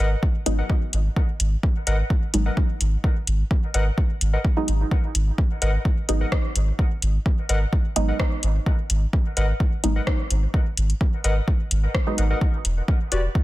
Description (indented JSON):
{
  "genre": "dub techno",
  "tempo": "128 BPM",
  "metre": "4/4",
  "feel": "straight",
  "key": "G# minor",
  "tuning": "A4 = 440 Hz",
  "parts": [
    { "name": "warbly lo-fi synth keys", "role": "riff", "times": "0.0-13.2 s", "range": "F#4 to F#5", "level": "-31 LUFS", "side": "left 3 dB", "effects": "chorus, sidechain pumping, dub echo" },
    { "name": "filtered dub chord stab", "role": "stabs", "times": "0.0-12.2 s", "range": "F#3 to D#4", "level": "-29 LUFS", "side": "right 1 dB", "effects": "chorus, phaser, vintage 12-bit sampler grit, sidechain pumping, dub echo" },
    { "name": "soft dub sub bass", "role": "bass", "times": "0.0-13.3 s", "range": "E1 to G#1", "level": "-21 LUFS", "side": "equal", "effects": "sidechain pumping" },
    { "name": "electronic kick drum", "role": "drums", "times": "0.2-13.4 s", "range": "none", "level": "-20 LUFS", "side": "equal", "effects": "none" },
    { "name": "soft vintage rhythm box", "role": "drums", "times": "0.5-13.2 s", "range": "hi-hat, rim click", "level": "-28 LUFS", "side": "left 1 dB", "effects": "overdrive" }
  ],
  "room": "little or no reverb",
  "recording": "dense, heavily limited modern master",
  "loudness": "-20 LUFS",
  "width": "side -17 dB against mid",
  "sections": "0.0-13.4 A section",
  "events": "filter sweep on synth stab 0.0-13.4",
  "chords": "0.0 G#m7; 12.4 Em7",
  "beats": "0.23 0.70 | 1.17 1.63 2.10 2.57 | 3.04 3.51 3.98 4.45 | 4.92 5.38 5.85 6.32 | 6.79 7.26 7.73 8.20 | 8.66 9.13 9.60 10.07 | 10.54 11.01 11.48 11.95 | 12.41 12.88 13.35"
}